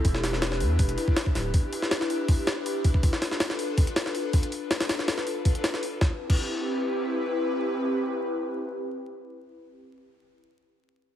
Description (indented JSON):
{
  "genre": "drum and bass, jungle",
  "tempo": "161 BPM",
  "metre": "4/4",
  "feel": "straight",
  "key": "unclear",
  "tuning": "A4 = 442 Hz",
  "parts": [
    { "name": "airy breathy pad", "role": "sustained chords", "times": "0.0-9.7 s", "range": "C4 to B4", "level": "-29 LUFS", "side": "left 1 dB", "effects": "chorus" },
    { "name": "soft dub sub bass", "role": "bass", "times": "0.0-1.5 s", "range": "D1 to E2", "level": "-27 LUFS", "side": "equal", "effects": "none" },
    { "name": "jungle sampler-style drum kit", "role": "drums", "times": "0.0-6.4 s", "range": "crash cymbal, hi-hat, kick drum, snare drum", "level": "-25 LUFS", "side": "equal", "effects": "none" }
  ],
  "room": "moderate echo chamber reverb, RT60 1.5 s",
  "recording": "heavily compressed radio sound, multiband compression, vinyl crackle",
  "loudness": "-24 LUFS",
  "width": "side -11 dB against mid",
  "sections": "0.0-6.0 A section; 6.0-9.0 B section",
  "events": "drop 0.0-6.0",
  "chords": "0.0 G6; 3.0 Dm6; 6.0 Cmaj7"
}